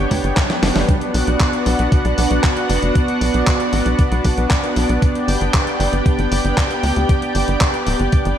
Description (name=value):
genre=italo disco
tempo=116 BPM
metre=4/4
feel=straight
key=B minor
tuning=A4 = 440 Hz
part: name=lush unison pad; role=sustained chords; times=0.0-8.4 s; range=B3 to G5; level=-19 LUFS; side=equal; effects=chorus
part: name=tight sequencer bass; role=bass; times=0.0-8.3 s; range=D1 to D2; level=-19 LUFS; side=equal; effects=none
part: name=dusty soul sampler-style drum kit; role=drums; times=0.1-8.4 s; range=handclaps, hi-hat, snare drum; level=-23 LUFS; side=equal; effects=studio reverb, gated reverb
part: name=electronic kick drum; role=drums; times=0.1-8.2 s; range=none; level=-16 LUFS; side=equal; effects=studio reverb
room=light reverb, digital ambience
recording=none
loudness=-14 LUFS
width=side -10 dB against mid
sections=0.0-8.4 A section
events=drum fill 0.4-0.9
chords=0.0 G; 0.9 Bm; 5.0 G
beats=0.37 | 0.88 1.40 1.92 2.44 | 2.95 3.47 3.99 4.50 | 5.02 5.54 6.06 6.57 | 7.09 7.61 8.13